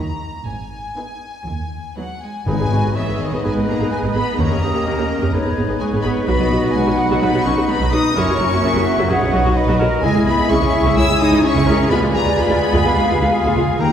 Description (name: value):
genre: classical, dramatic, fast romantic movement for symphony orchestra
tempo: 127 BPM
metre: 4/4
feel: rubato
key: G# minor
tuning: A4 = 440 Hz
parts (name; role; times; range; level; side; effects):
- warm symphonic violin section; melody; 0.0-13.9 s; D#5 to E6; -25 LUFS; left 4 dB; none
- warm symphonic violin section; second line; 0.0-13.9 s; G4 to G#5; -28 LUFS; left 3 dB; none
- dark symphonic viola section; accompaniment; 0.0-13.9 s; F#3 to G#4; -23 LUFS; right 1 dB; none
- dark symphonic double bass section; bass; 0.0-13.9 s; F#1 to D#2; -22 LUFS; right 2 dB; none
- warm symphonic cello section; bass; 0.0-13.9 s; D#2 to E4; -23 LUFS; right 2 dB; none
- clear clarinet; second line; 2.5-13.9 s; C#4 to G#4; -27 LUFS; left 2 dB; none
- mellow cor anglais; second line; 2.5-13.9 s; F#4 to D#5; -26 LUFS; right 1 dB; none
- warm French horn section; sustained chords; 2.5-13.9 s; F#3 to G4; -23 LUFS; left 3 dB; none
- timpani; percussion; 2.5-5.1, 13.8-13.9 s; G#2 to D#3; -23 LUFS; left 4 dB; none
- bright large flute ensemble; second line; 3.4-13.9 s; B4 to G5; -24 LUFS; equal; none
room: wet scoring stage reverb, RT60 1.7 s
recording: heard from further back in the room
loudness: -14 LUFS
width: side -9 dB against mid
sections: 0.0-2.5 A section; 2.5-13.9 B section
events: none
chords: 0.5 G#m; 4.4 D#7; 5.3 G#m; 6.3 B; 8.2 F#7; 9.1 B; 10.0 C#m; 11.9 Ddim7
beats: | 0.46 0.96 1.47 1.97 | 2.47 2.96 3.44 3.91 | 4.38 4.86 5.33 5.80 | 6.28 6.75 7.22 7.69 | 8.16 8.63 9.10 9.56 | 10.03 10.49 10.96 11.44 | 11.91 12.38 12.85 13.32 | 13.80